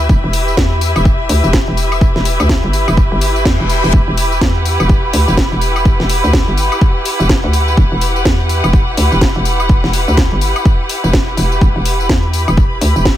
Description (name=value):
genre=bass house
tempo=125 BPM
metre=4/4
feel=swing 60% on 16ths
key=E minor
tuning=A4 = 440 Hz
part: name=hollow knocking FM bass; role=bass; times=0.0-13.2 s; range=E1 to E2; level=-15 LUFS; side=equal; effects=overdrive, sidechain pumping
part: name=house drum kit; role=drums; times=0.0-13.2 s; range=hi-hat, snare drum, tambourine, woodblock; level=-19 LUFS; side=left 1 dB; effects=none
part: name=rich chamber string section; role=texture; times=0.0-13.2 s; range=E4 to B5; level=-17 LUFS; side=equal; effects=sidechain pumping
part: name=electronic kick drum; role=drums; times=0.1-13.2 s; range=none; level=-12 LUFS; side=equal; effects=none
part: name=reverse cymbal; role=sound effects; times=3.2-3.9 s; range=none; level=-23 LUFS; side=left 6 dB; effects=none
room=little or no reverb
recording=none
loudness=-11 LUFS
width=side -12 dB against mid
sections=0.0-13.2 A section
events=reverse cymbal 3.2-3.9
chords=0.0 Emadd9